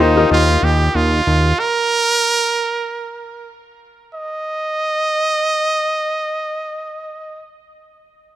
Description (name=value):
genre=pop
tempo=free time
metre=none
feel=none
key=Eb major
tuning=A4 = 440 Hz
part: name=brilliant trumpet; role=melody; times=0.0-7.5 s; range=Eb4 to Eb5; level=-17 LUFS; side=right 3 dB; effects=plate reverb
part: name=bright upright piano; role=accompaniment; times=0.0-1.6 s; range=Bb2 to Eb5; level=-18 LUFS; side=left 4 dB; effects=plate reverb
part: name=fat analog bass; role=bass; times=0.0-1.5 s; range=Eb2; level=-15 LUFS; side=equal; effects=none
room=moderate studio reverb, RT60 0.8 s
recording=none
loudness=-15 LUFS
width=side -13 dB against mid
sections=0.0-4.1 A section; 4.1-6.7 B section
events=none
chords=0.0 Ebadd9; 1.6 N.C.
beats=free time